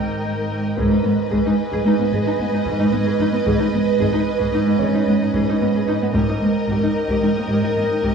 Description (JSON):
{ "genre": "cinematic, suspense film score", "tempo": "112 BPM", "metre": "5/4", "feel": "straight", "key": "G# harmonic minor", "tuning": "A4 = 440 Hz", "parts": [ { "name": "warm symphonic violin section", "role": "melody", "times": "0.0-8.1 s", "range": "D#5", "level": "-33 LUFS", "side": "left 2 dB", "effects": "none" }, { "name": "warm symphonic violin section", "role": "second line", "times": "0.0-8.1 s", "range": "A#4 to B4", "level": "-25 LUFS", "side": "right 2 dB", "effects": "none" }, { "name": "rich symphonic viola section", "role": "accompaniment", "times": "0.0-8.1 s", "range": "A#3 to G5", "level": "-26 LUFS", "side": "equal", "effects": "none" }, { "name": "warbly tape-like pad", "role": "sustained chords", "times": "0.0-8.1 s", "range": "A#4 to A#5", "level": "-29 LUFS", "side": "right 3 dB", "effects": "chorus, built-in reverb, phaser" }, { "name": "Celtic harp", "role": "riff", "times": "0.0-8.1 s", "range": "G#2 to G#3", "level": "-23 LUFS", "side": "left 4 dB", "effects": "none" }, { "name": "dark symphonic double bass section", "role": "bass", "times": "0.0-8.1 s", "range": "G#1", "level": "-27 LUFS", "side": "right 3 dB", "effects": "none" }, { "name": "warm symphonic cello section", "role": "bass", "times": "0.0-8.1 s", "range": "G#2", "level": "-22 LUFS", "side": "right 4 dB", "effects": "none" }, { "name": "warm grand piano", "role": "texture", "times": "0.0-8.1 s", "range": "C#4 to C#5", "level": "-31 LUFS", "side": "left 1 dB", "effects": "none" }, { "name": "taiko ensemble", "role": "drums", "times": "0.8-8.1 s", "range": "none", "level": "-29 LUFS", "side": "left 1 dB", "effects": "none" } ], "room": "wet concert hall reverb, RT60 2.5 s", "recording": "vinyl crackle, small room ambience", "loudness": "-17 LUFS", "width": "side -6 dB against mid", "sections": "0.0-8.1 A section", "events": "none", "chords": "0.0 D#/G#; 0.8 G#m; 6.1 D#/G#" }